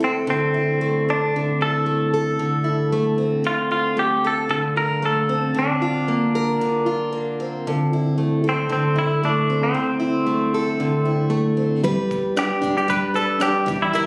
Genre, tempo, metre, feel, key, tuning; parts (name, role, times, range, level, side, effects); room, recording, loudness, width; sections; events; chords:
acoustic pop; 114 BPM; 4/4; straight; A4 = 438 Hz
direct-recorded clean electric guitar; melody; 0.0-14.0 s; C4 to B4; -25 LUFS; equal
picked plugged-in steel-string acoustic guitar; accompaniment; 0.0-14.1 s; D3 to B4; -23 LUFS; equal
breakbeat sampler-style drum kit; drums; 11.8-14.1 s; kick drum, rim click, shaker; -33 LUFS; equal
light reverb; recorded on a phone in the room, studio reverb; -21 LUFS; mono
0.0-11.9 A section; 11.9-14.1 B section
0.0 Amadd11/D; 3.4 Dm7; 5.5 Bbadd9/D; 7.7 Amadd11/D; 11.9 G